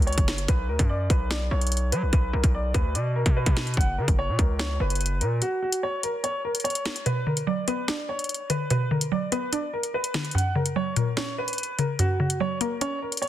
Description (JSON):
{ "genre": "hip hop, drill", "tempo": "146 BPM", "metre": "4/4", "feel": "half-time", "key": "B harmonic minor", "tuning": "A4 = 445 Hz", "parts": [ { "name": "dark baby grand piano", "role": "melody", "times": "0.0-13.3 s", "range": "F#4 to F#5", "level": "-29 LUFS", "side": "equal", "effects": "low-pass filter, ping-pong delay" }, { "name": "distorted 808-style bass", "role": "bass", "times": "0.0-5.4 s", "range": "F#1 to F#3", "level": "-26 LUFS", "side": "equal", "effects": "distortion" }, { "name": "drill drum kit", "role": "drums", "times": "0.0-13.3 s", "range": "hi-hat, kick drum, snare drum", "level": "-25 LUFS", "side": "equal", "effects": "none" }, { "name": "mallet-like synth pluck", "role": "accompaniment", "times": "7.1-13.3 s", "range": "F#2 to D4", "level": "-26 LUFS", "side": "equal", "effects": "chorus, low-pass filter" } ], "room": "light reverb, digital ambience", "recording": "dense, heavily limited modern master", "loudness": "-23 LUFS", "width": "side -12 dB against mid", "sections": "0.0-13.3 A section", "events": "break 5.4-7.1; kick muted 7.1-13.3", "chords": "0.5 Bm; 3.8 F#; 7.1 Bm; 10.3 F#", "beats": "0.07 | 0.48 0.90 1.31 1.72 | 2.13 2.54 2.95 3.36 | 3.77 4.18 4.59 5.00 | 5.42 5.83 6.24 6.65 | 7.06 7.47 7.88 8.29 | 8.70 9.12 9.53 9.94 | 10.35 10.76 11.17 11.58 | 11.99 12.40 12.81 13.22" }